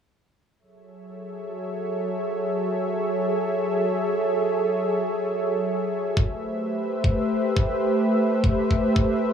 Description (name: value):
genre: liquid drum and bass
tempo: free time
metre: none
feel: none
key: unclear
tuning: A4 = 440 Hz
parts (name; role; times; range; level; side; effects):
- lush unison pad; sustained chords; 1.1-9.3 s; F#3 to E5; -23 LUFS; equal; chorus, sidechain pumping
- electronic kick drum; drums; 6.2-9.0 s; none; -22 LUFS; equal; none
room: moderate plate reverb, RT60 1.2 s, digital ambience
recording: small room ambience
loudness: -22 LUFS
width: side -8 dB against mid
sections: 0.6-9.3 A section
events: none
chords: 0.6 F#m9; 6.2 Am9